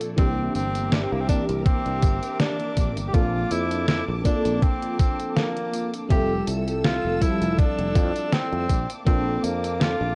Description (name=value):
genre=vaporwave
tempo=81 BPM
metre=4/4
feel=swing 54% on 16ths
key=Bb lydian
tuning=A4 = 440 Hz
part: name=FM electric piano with soft pad layer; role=accompaniment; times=0.0-10.2 s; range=Bb2 to E5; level=-30 LUFS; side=equal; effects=tremolo, ensemble chorus
part: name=clear symphonic string section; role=sustained chords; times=0.0-10.2 s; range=Bb3 to E6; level=-40 LUFS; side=equal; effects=none
part: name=detuned 8-bit digital drum machine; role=drums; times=0.0-10.0 s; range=hi-hat, snare drum, tambourine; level=-30 LUFS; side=equal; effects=none
part: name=clear tenor saxophone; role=melody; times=0.2-10.2 s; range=Bb3 to G4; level=-31 LUFS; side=equal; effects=vintage 12-bit sampler grit, tape echo
part: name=sustaining fretless electric bass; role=bass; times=0.2-10.1 s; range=F1 to F2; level=-30 LUFS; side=equal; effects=none
part: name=electronic kick drum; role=drums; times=0.2-9.2 s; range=none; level=-23 LUFS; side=equal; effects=none
room=little or no reverb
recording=dry, gritty hardware recording, cassette tape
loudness=-23 LUFS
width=mono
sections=0.0-10.2 A section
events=none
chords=0.2 C9; 3.1 Bbmaj7; 6.1 Fmaj7; 8.7 Bbmaj7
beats=| 0.18 0.92 1.66 2.40 | 3.14 3.88 4.62 5.36 | 6.11 6.84 7.59 8.33 | 9.07 9.81